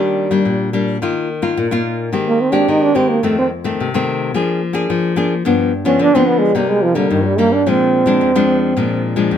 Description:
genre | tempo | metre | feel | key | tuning
samba | 108 BPM | 4/4 | straight | Eb major | A4 = 435 Hz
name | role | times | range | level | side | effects
breathy trombone | melody | 0.0-9.3 s | D3 to Eb4 | -15 LUFS | right 3 dB | plate reverb
nylon-string guitar | accompaniment | 0.0-9.4 s | F2 to Ab4 | -16 LUFS | left 4 dB | none
room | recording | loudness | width
moderate studio reverb, RT60 0.6 s | none | -13 LUFS | side -9 dB against mid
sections
0.0-1.0 A section; 1.0-9.4 B section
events
trombone solo 1.0-9.4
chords
0.0 Ebmaj7; 1.0 Ebsus2; 2.1 Abmaj7/Eb; 3.2 F7; 4.3 Bb7/F; 5.4 G7; 6.6 Cm7; 7.7 Bb7

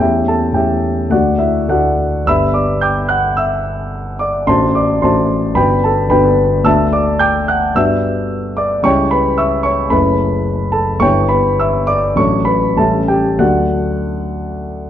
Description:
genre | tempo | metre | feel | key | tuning
classical, romantic character piece for solo piano | 90-113 BPM | 4/4 | rubato | D major | A4 = 441 Hz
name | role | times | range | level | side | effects
warm grand piano | solo | 0.0-14.9 s | F#1 to G6 | -12 LUFS | equal | none
room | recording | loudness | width
moderate recital hall reverb, RT60 1.5 s | dark, warm production | -12 LUFS | side -10 dB against mid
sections
0.0-14.9 A section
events
none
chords
0.0 A7/E; 1.1 D; 2.3 G; 4.5 D7/A; 5.6 Gmaj7; 6.7 D; 7.8 Gmaj7; 8.8 C#dim; 9.9 F#m7; 11.0 G6; 12.2 D/A; 12.8 A7; 13.4 D

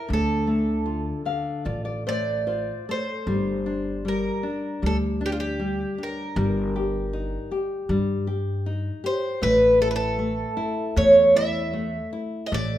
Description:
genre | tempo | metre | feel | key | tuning
fado-style ballad | 78 BPM | 4/4 | rubato | D minor, G minor from 3.3 s | A4 = 440 Hz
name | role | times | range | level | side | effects
picked twelve-string acoustic guitar | melody | 0.0-12.8 s | F4 to E5 | -23 LUFS | right 1 dB | none
nylon-string guitar | accompaniment | 0.0-12.8 s | D3 to F5 | -28 LUFS | left 2 dB | none
upright bass | bass | 0.1-12.8 s | G1 to G2 | -28 LUFS | equal | none
room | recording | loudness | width
moderate recital hall reverb, RT60 1.7 s | minimal, uncompressed stereo recording | -22 LUFS | side -12 dB against mid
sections
0.0-3.3 A section; 3.3-12.8 B section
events
nylon-string guitar fill 0.9-3.3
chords
0.1 Dm; 3.3 Gm; 9.4 A5

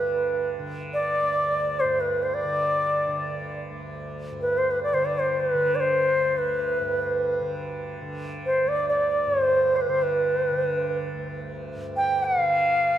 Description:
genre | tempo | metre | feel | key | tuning
indian classical, Hindustani | free time | none | none | D raga bageshri | A4 = 440 Hz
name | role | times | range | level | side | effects
bright reedy bansuri | melody | 0.0-13.0 s | B4 to G5 | -22 LUFS | equal | tape echo
tanpura | drone | 0.0-13.0 s | D2 to D3 | -34 LUFS | right 1 dB | none
room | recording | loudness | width
wet recital hall reverb, RT60 1.6 s | none | -22 LUFS | side -11 dB against mid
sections
0.0-13.0 A section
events
none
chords
none

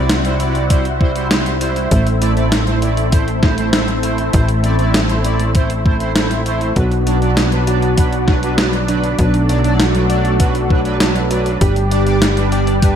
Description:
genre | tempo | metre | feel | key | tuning
synthwave | 99 BPM | 4/4 | straight | A dorian | A4 = 440 Hz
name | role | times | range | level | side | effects
analog string pad | sustained chords | 0.0-13.0 s | F#3 to F#4 | -21 LUFS | equal | ensemble chorus, sidechain pumping
analog synth brass | stabs | 0.0-13.0 s | F#3 to D5 | -22 LUFS | right 4 dB | chorus, digital delay
tight sequencer bass | bass | 0.0-13.0 s | G1 to C2 | -18 LUFS | equal | sidechain pumping
clean 12-bit digital drum machine | drums | 0.1-12.9 s | hi-hat, snare drum | -19 LUFS | equal | gated reverb
electronic kick drum | drums | 0.7-12.9 s | none | -14 LUFS | equal | none
wide unison lead | melody | 6.8-13.0 s | D4 to G4 | -20 LUFS | equal | ping-pong delay
room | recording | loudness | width
light reverb, digital ambience | none | -13 LUFS | side -8 dB against mid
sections
0.0-13.0 A section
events
none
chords
0.0 C; 1.9 Am; 6.8 Bm; 11.6 G

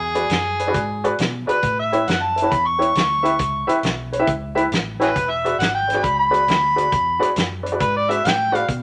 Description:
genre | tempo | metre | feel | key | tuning
electric blues shuffle | 136 BPM | 4/4 | swing 68% on 8ths | E mixolydian | A4 = 441 Hz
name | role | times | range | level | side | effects
overdriven harmonica | second line | 0.0-8.7 s | F#4 to C#6 | -22 LUFS | equal | none
vintage muted fingered electric bass | bass | 0.0-8.8 s | E1 to B2 | -33 LUFS | equal | none
warm upright piano | accompaniment | 0.2-8.6 s | E4 to E5 | -25 LUFS | equal | none
warm soul drum kit | drums | 0.2-8.8 s | hi-hat, kick drum, snare drum | -26 LUFS | equal | none
room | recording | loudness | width
moderate studio reverb, RT60 0.8 s | none | -20 LUFS | mono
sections
0.0-8.8 A section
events
harmonica solo 0.0-8.8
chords
0.0 E9; 1.6 A9; 5.2 E9

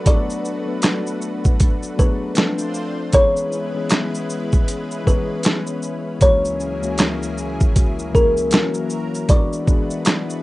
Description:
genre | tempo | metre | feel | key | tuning
lo-fi hip hop | 78 BPM | 4/4 | swing 60% on 16ths | B dorian | A4 = 441 Hz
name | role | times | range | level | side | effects
mellow tine electric piano | accompaniment | 0.0-10.4 s | C#2 to B4 | -25 LUFS | left 3 dB | cassette tape
lush unison pad | sustained chords | 0.0-10.4 s | C#3 to C5 | -29 LUFS | equal | chorus
kalimba | melody | 0.1-10.4 s | A#4 to D5 | -21 LUFS | equal | none
boom bap sampler-style drum kit | drums | 0.1-10.4 s | handclaps, hi-hat, kick drum, shaker, snare drum | -17 LUFS | equal | none
room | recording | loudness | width
light reverb | rough home demo mix, nothing above 11.0 kHz | -17 LUFS | side -18 dB against mid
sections
0.0-9.3 A section; 9.3-10.4 B section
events
none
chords
0.0 Bm7; 2.4 Dm7; 3.1 C#m7; 6.2 F#9/C#; 8.5 F#7; 9.3 E9

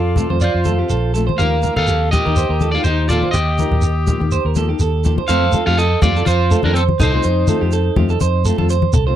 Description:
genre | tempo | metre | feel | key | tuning
highlife guitar band | 123 BPM | 4/4 | straight | F mixolydian | A4 = 442 Hz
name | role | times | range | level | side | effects
electric guitar at the edge of break-up | melody | 0.0-8.4 s | C4 to F5 | -20 LUFS | equal | none
breathy alto saxophone | second line | 0.0-5.0 s | Eb4 to Bb4 | -27 LUFS | left 7 dB | none
clean electric guitar | arpeggios | 0.0-9.2 s | G4 to D5 | -22 LUFS | right 11 dB | slapback echo
fingered electric bass | bass | 0.0-9.1 s | Bb1 to F2 | -18 LUFS | equal | none
nylon-string guitar | accompaniment | 0.2-9.2 s | F3 to G4 | -25 LUFS | left 6 dB | none
congas | percussion | 0.2-9.1 s | none | -21 LUFS | left 2 dB | none
shekere | percussion | 0.2-9.1 s | none | -21 LUFS | right 1 dB | none
room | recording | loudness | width
light reverb | dry, close 1970s-style studio recording | -14 LUFS | side -11 dB against mid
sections
0.0-5.3 A section; 5.3-9.2 B section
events
none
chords
0.0 F; 1.4 Ebadd9; 5.3 F

